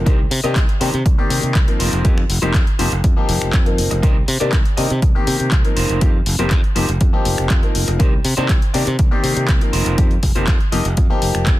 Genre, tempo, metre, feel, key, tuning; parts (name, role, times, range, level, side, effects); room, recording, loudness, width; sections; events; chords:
filtered disco house; 121 BPM; 4/4; straight; A4 = 441 Hz
warm concert grand piano; accompaniment; 0.0-11.6 s; Eb3 to D5; -22 LUFS; left 3 dB; phaser, sidechain pumping
modern bright fingered electric bass; bass; 0.0-11.6 s; F1 to C3; -20 LUFS; equal; sidechain pumping
electric guitar through a small old amp; riff; 0.1-11.5 s; Eb4 to Eb5; -27 LUFS; right 3 dB; spring reverb, sidechain pumping
electronic kick drum; drums; 0.1-11.6 s; -16 LUFS; equal; overdrive
punchy analog drum machine; drums; 0.1-11.6 s; finger snaps, handclaps, hi-hat; -24 LUFS; left 2 dB; overdrive, sidechain pumping on hats, sidechain pumping on cymbals
little or no reverb; dense, heavily limited modern master; -14 LUFS; side -16 dB against mid
0.0-11.6 A section
0.1 Cm7; 1.8 F7sus4; 4.0 Cm7; 5.8 F7sus4; 8.0 Cm7; 9.7 F7sus4